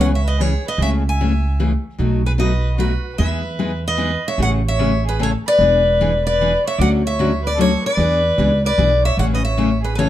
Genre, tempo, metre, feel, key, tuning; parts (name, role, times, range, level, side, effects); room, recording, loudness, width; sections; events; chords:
acoustic string swing (jazz manouche); 150 BPM; 3/4; swing 64% on 8ths; E major, A major from 4.4 s; A4 = 440 Hz
picked steel-string acoustic guitar; melody; 0.0-10.1 s; B4 to G#5; -20 LUFS; left 1 dB
warm violin; second line; 0.0-10.1 s; F#4 to E5; -26 LUFS; right 3 dB; slapback echo
picked steel-string acoustic guitar; accompaniment; 0.0-10.1 s; B2 to G#4; -21 LUFS; left 4 dB
upright bass; bass; 0.0-10.1 s; E1 to E2; -19 LUFS; right 1 dB
moderate studio reverb, RT60 0.8 s; dark, warm production; -15 LUFS; side -12 dB against mid
0.0-4.4 A section; 4.4-10.1 B section
0.0 C#m7; 0.8 Amaj7/C#; 2.0 B7; 3.2 Emaj7; 4.4 Amaj7; 5.6 E7; 6.8 Dmaj7; 8.0 E7; 9.2 Amaj7